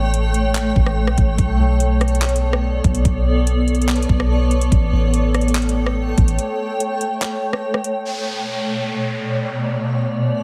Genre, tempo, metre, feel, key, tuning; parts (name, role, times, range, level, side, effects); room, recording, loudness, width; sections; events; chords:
hip hop, atmospheric cloud-rap; 144 BPM; 4/4; half-time; B minor; A4 = 437 Hz
granular cloud pad; sustained chords; 0.0-10.4 s; B2 to G5; -23 LUFS; equal; built-in reverb, sidechain pumping
soft 808-style bass; bass; 0.0-6.4 s; A1 to B1; -20 LUFS; equal
garage drum kit; drums; 0.1-7.9 s; handclaps, hi-hat, kick drum, rim click; -22 LUFS; equal
downlifter; sound effects; 8.1-10.4 s; -31 LUFS; equal
light reverb; heavily compressed radio sound; -19 LUFS; mono
0.0-8.1 A section; 8.1-10.4 B section
break 6.4-8.1
0.0 A7; 1.4 Bm9; 4.7 A7; 8.1 Bm9